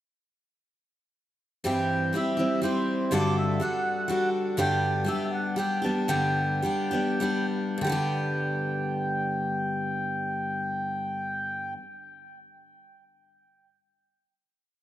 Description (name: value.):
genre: acoustic folk duo or small band.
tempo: 94-123 BPM.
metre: 3/4.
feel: straight.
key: G major.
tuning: A4 = 440 Hz.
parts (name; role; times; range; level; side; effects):
picked steel-string acoustic guitar; accompaniment; 1.6-11.9 s; G2 to A4; -27 LUFS; left 1 dB; none.
mellow accordion; melody; 1.7-11.7 s; C5 to A5; -30 LUFS; right 1 dB; analog delay.
room: moderate lush hall reverb, RT60 3.2 s.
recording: rough home demo mix.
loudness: -25 LUFS.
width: side -13 dB against mid.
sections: 1.6-7.8 interlude; 7.8-11.7 final chord.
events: slowing down 4.6-7.8.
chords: 1.6 C/G; 3.1 D/G; 4.6 G.